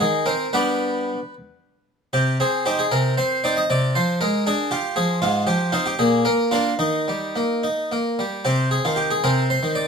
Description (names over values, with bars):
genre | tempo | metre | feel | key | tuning
classical, baroque-style suite movement for harpsichord | 72-81 BPM (dotted quarters) | 6/8 | rubato | Eb major from 5.2 s | A4 = 440 Hz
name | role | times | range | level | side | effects
harpsichord | solo | 0.0-9.9 s | Ab2 to Eb5 | -19 LUFS | equal | none
room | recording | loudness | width
moderate large studio reverb, RT60 1.1 s | minimal, uncompressed stereo recording | -19 LUFS | side -6 dB against mid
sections
0.0-8.4 A section; 8.4-9.9 A section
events
none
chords
0.0 Ab; 0.5 G; 2.1 Cm; 3.7 Dm7b5/C; 5.2 Fm7/Ab; 6.0 Bb; 6.8 Eb; 8.4 Cm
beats
| 0.55 1.34 | 2.14 2.92 | 3.69 4.46 | 5.21 5.98 | 6.80 7.62 | 8.45 9.23